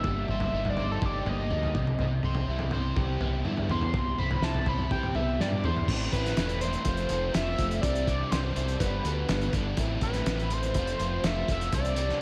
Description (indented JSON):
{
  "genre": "indie rock",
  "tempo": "123 BPM",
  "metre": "4/4",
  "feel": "straight",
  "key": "unclear",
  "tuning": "A4 = 440 Hz",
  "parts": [
    { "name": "overdriven synth lead", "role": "melody", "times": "0.0-12.2 s", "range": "A4 to C6", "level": "-35 LUFS", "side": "equal", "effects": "distortion, chorus, diffuse ambient delay" },
    { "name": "crunchy overdriven guitar", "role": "riff", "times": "0.0-12.2 s", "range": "G2 to C5", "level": "-35 LUFS", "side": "equal", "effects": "analog chorus" },
    { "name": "growling fingered electric bass", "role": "bass", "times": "0.0-12.1 s", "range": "E1 to G2", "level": "-34 LUFS", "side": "equal", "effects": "overdrive" },
    { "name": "cloth-damped thuddy drum kit", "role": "drums", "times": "0.0-12.2 s", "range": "crash cymbal, hi-hat, kick drum, snare drum, toms", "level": "-34 LUFS", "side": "equal", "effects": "none" }
  ],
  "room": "moderate lush hall reverb, RT60 2.7 s",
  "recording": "dreamy mix soaked in reverb",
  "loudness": "-28 LUFS",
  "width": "mono",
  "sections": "0.0-5.9 A section; 5.9-12.2 B section",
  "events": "analog synth lead solo 0.0-5.9; drum fill 5.4-5.9",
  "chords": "0.0 Eb6/G; 1.8 Cmaj7; 5.9 Amadd9; 6.9 F; 7.8 Csus2; 8.8 G; 9.8 Amadd9; 10.7 F"
}